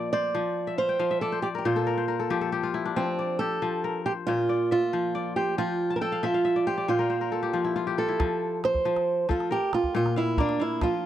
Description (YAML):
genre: west african traditional, West African string and xylophone music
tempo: 92 BPM (dotted quarters)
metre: 12/8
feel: straight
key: F major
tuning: A4 = 440 Hz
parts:
  - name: fingerpicked old ladder-braced acoustic guitar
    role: melody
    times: 0.0-11.1 s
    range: C4 to D5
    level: -26 LUFS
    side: right 3 dB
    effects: none
  - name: kora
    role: arpeggios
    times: 0.0-11.1 s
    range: Bb2 to A5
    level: -28 LUFS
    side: left 6 dB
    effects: none
  - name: calabash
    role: percussion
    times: 8.2-10.9 s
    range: none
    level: -29 LUFS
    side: right 1 dB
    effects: none
room: light reverb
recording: dry, close 1970s-style studio recording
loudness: -24 LUFS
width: side -11 dB against mid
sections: 0.0-8.2 A section; 8.2-11.1 B section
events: kora fill 0.7-3.0, 5.9-8.2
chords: 0.3 F5; 1.7 Bb5; 3.0 F; 4.3 Bb; 5.6 F5; 6.9 Bb5; 8.2 F; 9.5 Bb5